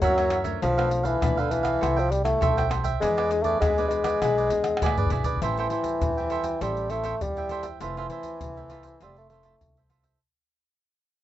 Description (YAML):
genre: samba and choro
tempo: 100 BPM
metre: 4/4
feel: straight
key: A minor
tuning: A4 = 442 Hz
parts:
  - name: mellow bassoon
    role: melody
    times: 0.0-9.9 s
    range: D3 to A3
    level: -25 LUFS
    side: left 1 dB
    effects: none
  - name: cavaquinho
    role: accompaniment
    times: 0.0-10.2 s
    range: D4 to G5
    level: -31 LUFS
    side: right 7 dB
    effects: none
  - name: nylon-string guitar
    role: accompaniment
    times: 0.0-10.2 s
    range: F2 to G#4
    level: -37 LUFS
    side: left 9 dB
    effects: none
  - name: upright bass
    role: bass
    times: 0.0-10.1 s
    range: F1 to F#2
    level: -31 LUFS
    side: equal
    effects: none
  - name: egg shaker, surdo, pandeiro and tamborim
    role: percussion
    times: 0.0-10.2 s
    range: none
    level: -30 LUFS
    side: left 1 dB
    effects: none
room: light reverb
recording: rough home demo mix, nothing above 7.7 kHz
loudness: -22 LUFS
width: side -13 dB against mid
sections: 0.0-5.4 A section; 5.4-10.2 B section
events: drum fill 4.7-5.4; fade-out 5.4-10.2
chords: 0.0 F#7; 0.6 Bm7b5; 1.8 Am7/C; 3.0 E7; 5.4 Am7; 7.8 Fmaj7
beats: 0.03 | 0.62 1.22 1.82 2.42 | 3.02 3.62 4.22 4.82 | 5.41 6.01 6.61 7.21 | 7.81 8.41 9.01 9.61